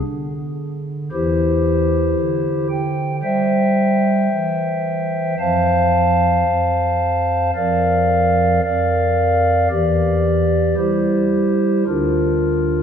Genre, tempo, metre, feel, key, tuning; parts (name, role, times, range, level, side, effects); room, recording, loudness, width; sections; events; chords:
classical, chorale-style piece for pipe organ; 56 BPM; 4/4; rubato; A4 = 440 Hz
pipe organ, stopped flute; solo; 0.0-12.8 s; D2 to A5; -15 LUFS; equal
wet church reverb, RT60 3.4 s; -15 LUFS; side -8 dB against mid
0.0-12.8 A section
0.0 N.C.; 1.1 C/E; 5.4 F; 7.5 Bb/F; 9.7 C/E; 11.9 Bb/D